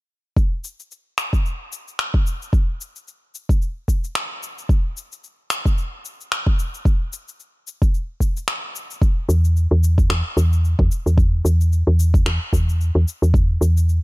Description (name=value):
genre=organic downtempo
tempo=111 BPM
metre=4/4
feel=swing 57% on 16ths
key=unclear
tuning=A4 = 440 Hz
part: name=electronic cabasa and finger snaps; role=drums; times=0.4-14.0 s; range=none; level=-27 LUFS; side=left 1 dB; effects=overdrive
part: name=electronic kick drum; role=drums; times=0.4-13.5 s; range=none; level=-17 LUFS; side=equal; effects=overdrive
part: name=woody FM bass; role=bass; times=9.3-14.0 s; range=E2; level=-16 LUFS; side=equal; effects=tube saturation, sidechain pumping
room=little or no reverb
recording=dark, warm production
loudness=-17 LUFS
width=side -21 dB against mid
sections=0.4-9.0 A section; 9.0-14.0 B section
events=none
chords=none